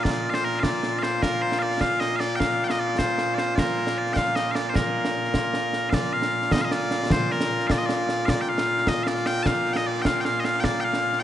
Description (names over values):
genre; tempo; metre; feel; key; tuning
scottish traditional, Scottish pipe music; 102 BPM (dotted quarters); 6/8; straight; Bb major; A4 = 441 Hz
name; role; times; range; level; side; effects
loud bright bagpipes; melody; 0.0-11.2 s; Bb2 to A5; -23 LUFS; equal; none
concert snare drum and concert bass drum; drums; 0.1-11.2 s; none; -27 LUFS; equal; none
room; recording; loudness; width
wet cathedral reverb, RT60 6.5 s; in a vast, echoing space, nothing above 10.5 kHz; -21 LUFS; side -11 dB against mid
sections
0.0-5.9 A section; 5.9-11.2 B section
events
none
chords
none